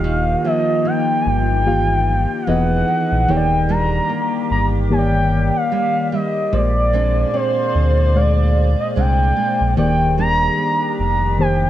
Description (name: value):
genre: R&B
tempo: 74 BPM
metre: 4/4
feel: swing 58% on 16ths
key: Eb major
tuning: A4 = 445 Hz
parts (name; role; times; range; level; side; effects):
- gliding portamento lead; melody; 0.0-11.7 s; C5 to Bb5; -20 LUFS; equal; chorus, slapback echo
- muted felt-like synth keys; accompaniment; 0.0-11.7 s; Bb2 to F5; -22 LUFS; left 2 dB; chorus
- glassy FM pad; sustained chords; 0.0-11.7 s; Eb3 to D5; -26 LUFS; left 2 dB; ensemble chorus, built-in reverb
- nylon-string guitar; arpeggios; 0.0-11.7 s; Bb2 to D4; -25 LUFS; right 6 dB; slapback echo
- sub bass with octave; bass; 0.0-11.7 s; Eb1 to D2; -18 LUFS; equal; none
room: little or no reverb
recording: worn, warbling old tape, cassette tape, warbly pitch drift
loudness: -15 LUFS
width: side -12 dB against mid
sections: 0.0-11.7 A section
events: none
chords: 0.0 Ebadd9; 2.5 Emaj7; 3.3 Ebmaj7; 6.5 Bb9; 9.8 Ebmaj7